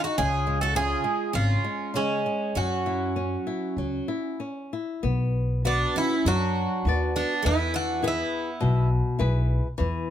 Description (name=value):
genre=fado-style ballad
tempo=100 BPM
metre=4/4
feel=uneven beats, rubato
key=B minor from 5.0 s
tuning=A4 = 438 Hz
part: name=Greek bouzouki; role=melody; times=0.0-8.9 s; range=C#4 to A4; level=-27 LUFS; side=right 2 dB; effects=none
part: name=picked twelve-string acoustic guitar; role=second line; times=0.0-8.9 s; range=G#3 to F#4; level=-31 LUFS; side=right 3 dB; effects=none
part: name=flamenco guitar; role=accompaniment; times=0.0-10.1 s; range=B2 to F#5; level=-30 LUFS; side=left 4 dB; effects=none
part: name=upright bass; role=bass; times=0.2-10.1 s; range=G#1 to F#2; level=-26 LUFS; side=equal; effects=none
room=light reverb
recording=none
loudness=-23 LUFS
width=side -10 dB against mid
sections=0.0-5.0 A section; 5.0-10.1 B section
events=none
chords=0.2 C#; 2.6 F#5; 5.0 Bm; 7.4 E